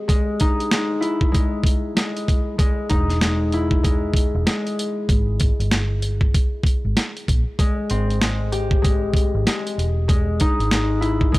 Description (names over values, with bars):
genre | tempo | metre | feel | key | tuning
hip hop, boom-bap hip-hop | 96 BPM | 4/4 | swing 61% on 16ths | unclear | A4 = 441 Hz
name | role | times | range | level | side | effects
concert harp | accompaniment | 0.0-11.4 s | G#3 to G4 | -24 LUFS | left 2 dB | high-pass filter, low-pass filter
boom bap sampler-style drum kit | drums | 0.1-11.4 s | hi-hat, kick drum, snare drum | -19 LUFS | equal | none
vintage muted fingered electric bass | bass | 2.9-11.3 s | E1 to Bb1 | -22 LUFS | equal | none
room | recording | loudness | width
little or no reverb | dry, gritty hardware recording | -18 LUFS | side -19 dB against mid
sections
0.0-11.4 A section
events
break 0.0-2.6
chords
0.0 Emaj7; 5.1 Abmaj7; 9.8 Emaj7